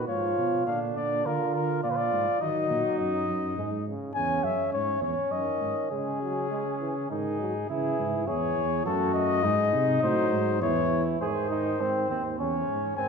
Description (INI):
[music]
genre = classical, imitative canzona for brass ensemble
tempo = 102 BPM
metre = 3/4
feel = straight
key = C# minor from 4.1 s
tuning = A4 = 441 Hz
[part]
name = dark trumpet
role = melody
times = 0.0-13.1 s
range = G#4 to G#5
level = -29 LUFS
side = left 8 dB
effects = none
[part]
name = mellow flugelhorn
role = second line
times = 0.0-13.1 s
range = B#3 to G#4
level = -30 LUFS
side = right 6 dB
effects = none
[part]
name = warm trombone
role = accompaniment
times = 0.0-13.1 s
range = C#3 to A3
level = -34 LUFS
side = right 1 dB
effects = none
[part]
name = mellow tuba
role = bass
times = 0.0-13.1 s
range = D#2 to D#3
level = -32 LUFS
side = right 3 dB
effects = none
[sound]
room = wet concert hall reverb, RT60 1.8 s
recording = minimal, uncompressed stereo recording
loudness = -25 LUFS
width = side -5 dB against mid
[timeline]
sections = 0.0-7.7 A section; 7.7-11.2 B section; 11.2-13.1 A section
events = none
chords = 0.1 Fdim/Ab; 0.7 A#; 2.4 D#m; 3.6 G#sus4; 4.1 C#m/E; 5.3 G#7sus4/F#; 5.9 G#sus4/C#; 7.1 G#5; 7.7 C#m; 8.9 D#dim/F#; 9.4 G#; 10.6 C#m/E; 11.2 G#; 12.4 C#m/E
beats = 0.08 | 0.67 1.25 1.84 | 2.42 2.99 3.57 | 4.15 4.73 5.32 | 5.91 6.51 7.11 | 7.70 8.28 8.86 | 9.44 10.03 10.62 | 11.21 11.80 12.39 | 12.98